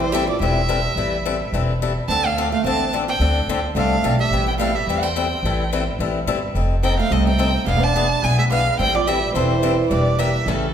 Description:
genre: acoustic string swing (jazz manouche)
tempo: 215 BPM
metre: 4/4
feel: swing 57% on 8ths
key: A minor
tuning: A4 = 440 Hz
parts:
  - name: rich violin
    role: melody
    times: 0.0-10.7 s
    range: A4 to A5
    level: -23 LUFS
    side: right 2 dB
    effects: none
  - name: picked steel-string acoustic guitar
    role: second line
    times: 0.0-10.7 s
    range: C#3 to D4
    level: -25 LUFS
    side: right 5 dB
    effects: none
  - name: picked swing-style acoustic guitar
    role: accompaniment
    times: 0.0-10.7 s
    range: C#3 to A4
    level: -23 LUFS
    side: left 5 dB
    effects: none
  - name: upright bass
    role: bass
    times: 0.0-10.7 s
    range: E1 to E2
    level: -22 LUFS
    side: equal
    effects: none
room: wet recital hall reverb, RT60 1.4 s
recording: recorded in a church or concert hall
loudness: -17 LUFS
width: side -9 dB against mid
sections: 0.0-10.7 A section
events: none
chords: 0.0 Am7; 2.1 Dm7; 4.3 Am7; 6.6 F7; 7.7 E7b9; 8.8 Am7; 9.9 Em7b5

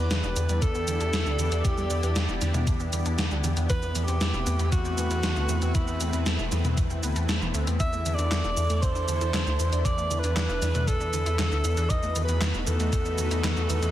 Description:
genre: synthwave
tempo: 117 BPM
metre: 4/4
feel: straight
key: E minor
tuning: A4 = 439 Hz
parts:
  - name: breathy alto saxophone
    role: melody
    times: 0.0-13.9 s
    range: E4 to E5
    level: -31 LUFS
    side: equal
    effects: digital delay
  - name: lush unison pad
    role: sustained chords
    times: 0.0-13.9 s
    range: A3 to D5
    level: -34 LUFS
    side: left 1 dB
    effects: chorus, phaser, sidechain pumping
  - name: analog pluck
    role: arpeggios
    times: 0.0-13.9 s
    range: D3 to A4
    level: -37 LUFS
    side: right 4 dB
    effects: chorus, vintage 12-bit sampler grit, digital delay
  - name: wide detuned saw bass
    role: bass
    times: 0.0-13.9 s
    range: E1 to E2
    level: -27 LUFS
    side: equal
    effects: chorus, sidechain pumping
  - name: gated 80s digital drum machine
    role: drums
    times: 0.1-13.9 s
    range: cabasa, handclaps, hi-hat, snare drum, toms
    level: -31 LUFS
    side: equal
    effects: gated reverb, gated reverb snare, small room reverb
  - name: electronic kick drum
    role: drums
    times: 0.6-13.0 s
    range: none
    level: -27 LUFS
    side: equal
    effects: small room reverb
room: light reverb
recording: dense, heavily limited modern master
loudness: -23 LUFS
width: side -12 dB against mid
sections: 0.0-13.9 A section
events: none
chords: 0.0 Em7; 3.7 Amadd9/E; 7.8 Dsus2/E; 11.9 B7/E

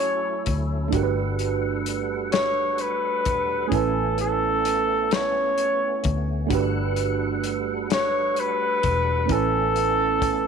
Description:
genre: slow six-eight R&B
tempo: 43 BPM (dotted quarters)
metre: 6/8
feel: straight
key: unclear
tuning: A4 = 440 Hz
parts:
  - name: warm flugelhorn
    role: melody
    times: 0.0-10.5 s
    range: G#4 to C#5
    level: -22 LUFS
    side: left 1 dB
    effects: slapback echo
  - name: mellow FM electric piano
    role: accompaniment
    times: 0.0-10.5 s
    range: A3 to G#5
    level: -27 LUFS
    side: right 12 dB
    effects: chorus
  - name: percussive tonewheel organ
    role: sustained chords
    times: 0.0-10.5 s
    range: F#3 to F#5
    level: -33 LUFS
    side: left 1 dB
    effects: overdrive, chorus vibrato, slow rotary speaker
  - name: vintage muted fingered electric bass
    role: bass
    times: 0.0-10.5 s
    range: E1 to D2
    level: -28 LUFS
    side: left 2 dB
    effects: none
  - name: warm soul drum kit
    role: drums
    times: 0.0-10.4 s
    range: hi-hat, kick drum, snare drum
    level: -28 LUFS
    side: left 6 dB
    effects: none
room: moderate echo chamber reverb, RT60 2.3 s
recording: 1960s-style stereo with parts hard left and right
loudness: -21 LUFS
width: side -6 dB against mid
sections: 0.0-10.5 A section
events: none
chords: 0.0 F#m7; 0.9 Gmaj9; 3.7 Amaj9; 6.5 Gmaj9; 9.3 Amaj9

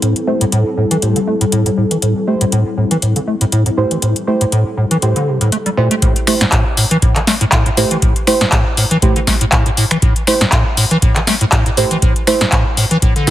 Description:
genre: acid house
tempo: 120 BPM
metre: 4/4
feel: swing 55% on 16ths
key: A minor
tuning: A4 = 435 Hz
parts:
  - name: warm analog pad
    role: sustained chords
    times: 0.0-6.0 s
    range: G3 to A4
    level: -20 LUFS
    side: left 2 dB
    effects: chorus, sidechain pumping
  - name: acid bass, square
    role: riff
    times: 0.0-13.3 s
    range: A2 to A3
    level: -15 LUFS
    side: equal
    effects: overdrive, wide subtle chorus, tape echo
  - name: electro analog drum machine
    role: drums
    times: 0.0-13.3 s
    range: finger snaps, handclaps, hi-hat, snare drum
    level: -16 LUFS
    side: left 1 dB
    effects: none
  - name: deep mellow chord stab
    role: stabs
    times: 0.3-13.3 s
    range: A3 to C5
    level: -19 LUFS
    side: right 3 dB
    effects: analog chorus, tape echo
  - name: electronic kick drum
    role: drums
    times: 6.0-13.3 s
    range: none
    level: -15 LUFS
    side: equal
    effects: none
room: light reverb, digital ambience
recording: heavily compressed radio sound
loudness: -11 LUFS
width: side -13 dB against mid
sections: 0.0-6.0 A section; 6.0-13.3 B section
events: filter sweep on acid bass 0.0-6.0; filter sweep on synth stab 0.0-6.0; drop 6.0-13.3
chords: 0.0 Am7

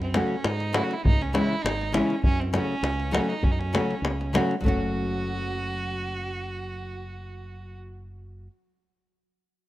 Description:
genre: balkan folk, Balkan wedding band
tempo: 100 BPM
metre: 2/4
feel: swing 54% on 16ths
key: F# minor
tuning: A4 = 439 Hz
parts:
  - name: rich violin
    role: melody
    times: 0.0-7.8 s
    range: B#3 to F#4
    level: -32 LUFS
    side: right 3 dB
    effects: none
  - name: fingered electric bass with an envelope filter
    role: bass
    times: 0.0-8.5 s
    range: F#1 to G#2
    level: -31 LUFS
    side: equal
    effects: none
  - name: davul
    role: percussion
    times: 0.0-4.9 s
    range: none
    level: -26 LUFS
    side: left 1 dB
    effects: none
  - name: nylon-string guitar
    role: accompaniment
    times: 0.1-8.5 s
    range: C#3 to F#4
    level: -28 LUFS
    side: left 1 dB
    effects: none
room: light reverb, studio ambience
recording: rough home demo mix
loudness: -23 LUFS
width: side -15 dB against mid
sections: 0.0-4.6 A section; 4.6-7.0 B section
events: none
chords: 0.0 F#m; 1.0 C#m; 2.2 F#m

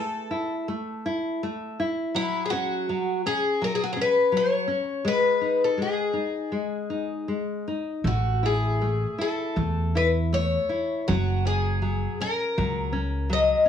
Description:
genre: fado-style ballad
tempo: 81 BPM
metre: 4/4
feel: rubato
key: unclear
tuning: A4 = 440 Hz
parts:
  - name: picked twelve-string acoustic guitar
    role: melody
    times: 0.0-13.7 s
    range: E4 to D#5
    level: -25 LUFS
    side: left 2 dB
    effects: none
  - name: nylon-string guitar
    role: accompaniment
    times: 0.0-13.7 s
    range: F#3 to E4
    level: -29 LUFS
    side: left 2 dB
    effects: none
  - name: upright bass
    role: bass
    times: 8.0-13.5 s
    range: F#1 to E2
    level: -25 LUFS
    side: equal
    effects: none
room: light reverb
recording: studio reverb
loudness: -23 LUFS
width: side -8 dB against mid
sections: 0.0-13.7 A section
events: none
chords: 0.0 A5; 2.1 F#5; 5.1 G#5; 8.1 A; 11.1 F#

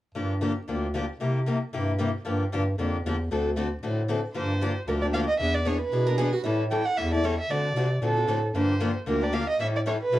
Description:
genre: acoustic string swing (jazz manouche)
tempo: 229 BPM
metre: 4/4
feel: swing 56% on 8ths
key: G dorian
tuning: A4 = 436 Hz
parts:
  - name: mellow bass clarinet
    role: bass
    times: 0.1-10.2 s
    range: D2 to D3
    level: -28 LUFS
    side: equal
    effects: none
  - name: picked steel-string acoustic guitar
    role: accompaniment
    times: 0.2-10.2 s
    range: C3 to A4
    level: -29 LUFS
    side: left 3 dB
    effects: none
  - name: warm violin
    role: melody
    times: 4.4-10.2 s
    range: A4 to G5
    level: -28 LUFS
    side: right 2 dB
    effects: plate reverb
  - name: picked steel-string acoustic guitar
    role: second line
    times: 6.1-6.6 s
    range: E4 to Bb4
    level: -32 LUFS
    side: right 3 dB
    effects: none
room: moderate studio reverb, RT60 0.5 s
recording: worn, warbling old tape, cassette tape, warbly pitch drift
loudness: -24 LUFS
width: side -14 dB against mid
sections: 0.1-4.3 A section; 4.3-10.2 B section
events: none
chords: 0.1 Gm7; 1.2 C7; 2.2 Gm7; 3.3 D7; 4.3 Gm7; 5.4 E7; 6.4 A7; 7.5 D7; 8.5 Gm7; 9.6 A7

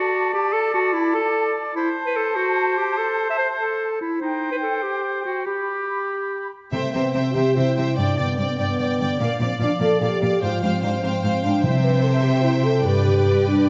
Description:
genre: cinematic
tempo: 98 BPM (dotted quarters)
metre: 6/8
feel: straight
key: G major, C major from 6.7 s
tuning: A4 = 442 Hz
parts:
  - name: bright clarinet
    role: second line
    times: 0.0-6.5 s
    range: Eb4 to E5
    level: -25 LUFS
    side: equal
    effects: none
  - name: clear oboe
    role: second line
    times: 0.0-6.5 s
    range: G4 to D5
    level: -29 LUFS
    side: equal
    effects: none
  - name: large flute ensemble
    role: second line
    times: 0.0-6.5 s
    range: G5 to B5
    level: -31 LUFS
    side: equal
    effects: none
  - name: warm symphonic violin section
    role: melody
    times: 6.7-13.7 s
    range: F5 to G5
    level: -36 LUFS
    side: equal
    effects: none
  - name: warm symphonic violin section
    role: second line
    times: 6.7-13.7 s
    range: D5 to F5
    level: -32 LUFS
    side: equal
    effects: none
  - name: rich symphonic viola section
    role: accompaniment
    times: 6.7-13.7 s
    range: B4 to D5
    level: -30 LUFS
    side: equal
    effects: none
  - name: dark French horn section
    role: sustained chords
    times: 6.7-13.7 s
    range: A3 to B4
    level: -25 LUFS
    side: equal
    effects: none
  - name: concert harp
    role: arpeggios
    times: 6.7-13.7 s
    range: G2 to E5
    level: -28 LUFS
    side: equal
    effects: none
  - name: rich symphonic cello section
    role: bass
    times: 6.7-13.7 s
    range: G2 to C3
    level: -26 LUFS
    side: equal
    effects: none
  - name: timpani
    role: percussion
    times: 6.7-7.3, 11.6-12.2 s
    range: C3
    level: -29 LUFS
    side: equal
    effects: none
room: wet scoring stage reverb, RT60 1.6 s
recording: nothing above 7.9 kHz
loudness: -21 LUFS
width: mono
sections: 0.0-6.7 A section; 6.7-13.7 B section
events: none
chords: 0.0 D/F#; 1.8 Am/E; 4.2 C5/Eb; 5.5 G; 6.7 C; 8.0 G; 9.2 Bb; 10.4 Fmadd9/Ab; 11.6 C; 12.9 G

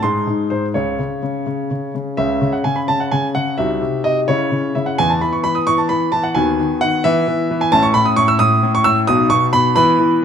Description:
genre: classical-period piano sonatina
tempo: 87 BPM (dotted quarters)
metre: 6/8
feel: rubato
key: C# minor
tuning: A4 = 440 Hz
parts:
  - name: clear grand piano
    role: solo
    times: 0.0-10.2 s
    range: A1 to E6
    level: -14 LUFS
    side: equal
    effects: none
room: moderate recital hall reverb, RT60 1.6 s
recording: close, detailed microphones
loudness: -14 LUFS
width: side -8 dB against mid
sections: 0.0-2.2 A section; 2.2-10.2 A section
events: none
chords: 0.0 G#; 0.8 C#5; 3.6 Cdim; 4.3 C#m; 5.0 E5; 6.4 B/D#; 7.1 E5; 7.7 A; 9.1 B

